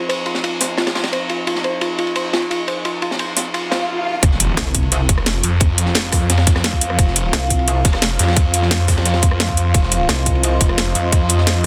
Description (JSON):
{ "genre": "dark technical drum and bass", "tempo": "174 BPM", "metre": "4/4", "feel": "straight", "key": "unclear", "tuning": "A4 = 440 Hz", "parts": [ { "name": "deep dark ambient pad", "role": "sustained chords", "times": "0.0-11.7 s", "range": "F4 to F5", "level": "-28 LUFS", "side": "equal", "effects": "chorus, built-in reverb, sidechain pumping" }, { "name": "soft round pluck", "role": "arpeggios", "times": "0.0-3.8 s", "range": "F4 to C5", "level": "-25 LUFS", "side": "equal", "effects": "chorus, cassette tape, sidechain pumping, digital delay" }, { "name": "crunchy breakbeat drum kit", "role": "drums", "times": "0.1-11.7 s", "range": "ride cymbal, snare drum", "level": "-26 LUFS", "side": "equal", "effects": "high-pass filter on cymbals, high-pass filter on snare, high-pass filter on room" }, { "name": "drum and bass drum kit", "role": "drums", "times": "0.6-0.7, 3.4-11.7 s", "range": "hi-hat, rim click, snare drum", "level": "-21 LUFS", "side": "equal", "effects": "none" }, { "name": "swell and impact", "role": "sound effects", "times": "3.6-5.6 s", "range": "none", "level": "-26 LUFS", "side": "equal", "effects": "none" }, { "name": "snarling distorted saw bass", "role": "bass", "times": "4.2-11.7 s", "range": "F1 to F2", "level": "-20 LUFS", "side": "equal", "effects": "distortion, overdrive, sidechain pumping" }, { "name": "electronic kick drum", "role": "drums", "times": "4.2-11.7 s", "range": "none", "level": "-18 LUFS", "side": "equal", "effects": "none" }, { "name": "pulsing pluck wobble bass", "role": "bass", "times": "4.6-5.1, 7.3-7.8, 10.1-10.6 s", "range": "C2", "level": "-20 LUFS", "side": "equal", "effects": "chorus" } ], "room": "light reverb, digital ambience", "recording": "dense, heavily limited modern master", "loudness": "-17 LUFS", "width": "mono", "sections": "0.0-4.2 A section; 4.2-11.7 B section", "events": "filter sweep on ambient pad 0.0-4.2; swell 3.6-4.2; drop 4.2-11.7; impact 4.2-5.6", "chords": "0.0 F5" }